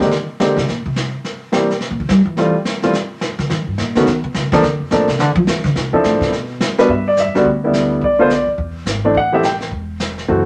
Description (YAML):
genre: jazz piano trio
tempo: 212 BPM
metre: 4/4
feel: swing 62% on 8ths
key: C major, G major from 6.9 s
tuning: A4 = 440 Hz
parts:
  - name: warm baby grand piano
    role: melody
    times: 0.0-10.4 s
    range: D3 to G5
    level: -16 LUFS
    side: equal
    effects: none
  - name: upright bass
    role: bass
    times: 0.0-10.5 s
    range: E1 to G3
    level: -22 LUFS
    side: equal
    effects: none
  - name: jazz brush drum kit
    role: drums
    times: 0.0-10.5 s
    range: brushed snare drum, hi-hat, kick drum, snare drum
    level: -25 LUFS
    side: equal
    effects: none
room: wet studio reverb, RT60 0.6 s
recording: none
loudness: -17 LUFS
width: mono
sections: 0.0-6.9 A section; 6.9-10.5 B section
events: upright bass solo 0.0-6.9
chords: 0.0 Abadd9(#11); 1.2 C7 (rootless); 2.4 Fmaj9; 3.5 G5; 4.1 Badd9; 4.6 Bbmaj7 (rootless); 5.8 Dm9; 6.3 N.C.; 6.9 G; 8.0 Bm; 8.6 E; 9.2 A5